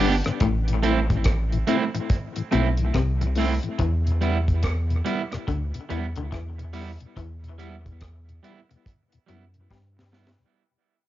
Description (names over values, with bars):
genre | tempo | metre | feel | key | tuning
dub reggae | 71 BPM | 4/4 | swing 63% on 16ths | E minor | A4 = 440 Hz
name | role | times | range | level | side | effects
electric guitar at the edge of break-up | accompaniment | 0.0-10.3 s | G3 to G4 | -27 LUFS | right 6 dB | cassette tape, dub echo, plate reverb
mellow tonewheel organ | accompaniment | 0.0-10.4 s | E2 to E4 | -30 LUFS | left 6 dB | slow rotary speaker, cassette tape, dub echo
soft dub sub bass | bass | 0.0-10.4 s | G1 to G2 | -25 LUFS | equal | tube saturation
deep reggae drum kit | drums | 0.2-10.5 s | hi-hat, kick drum, rim click, snare drum | -26 LUFS | equal | none
clean electric guitar | riff | 0.4-10.0 s | A2 to G3 | -30 LUFS | left 5 dB | cassette tape, dub echo
room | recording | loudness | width
moderate studio reverb, RT60 0.5 s | home recording on cassette, nothing above 7.5 kHz | -22 LUFS | side -13 dB against mid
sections
0.0-10.6 A section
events
fade-out 0.0-10.6; drum fill 9.7-10.6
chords
0.4 Am; 3.8 Em